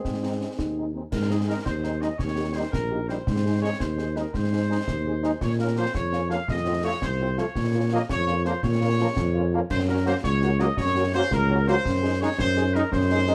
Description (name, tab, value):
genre	military-style march for wind band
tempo	112 BPM (dotted quarters)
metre	6/8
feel	straight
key	Ab major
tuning	A4 = 439 Hz
part	dark trumpet section	melody	0.0-13.3 s	Ab4 to F5	-32 LUFS	equal	none
part	dark euphonium	second line	0.0-1.0 s	C4 to Eb4	-34 LUFS	equal	none
part	clear trombone section	sustained chords	0.0-13.3 s	F3 to Eb4	-33 LUFS	equal	none
part	mellow tuba	bass	0.0-13.3 s	Bb1 to Bb2	-27 LUFS	equal	none
part	concert snare drum, concert bass drum and clash cymbals	drums	0.0-13.3 s	none	-35 LUFS	equal	none
part	mellow French horn section	accompaniment	0.2-13.3 s	Ab3 to Ab4	-34 LUFS	equal	none
room	little or no reverb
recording	none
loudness	-25 LUFS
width	mono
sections	0.0-1.1 A section; 1.1-13.3 B section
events	none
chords	0.0 Ab; 2.2 Eb7; 3.3 Ab; 5.4 Bbm; 6.5 F7; 7.6 Bbm; 9.7 Gb; 11.9 Ab7/Gb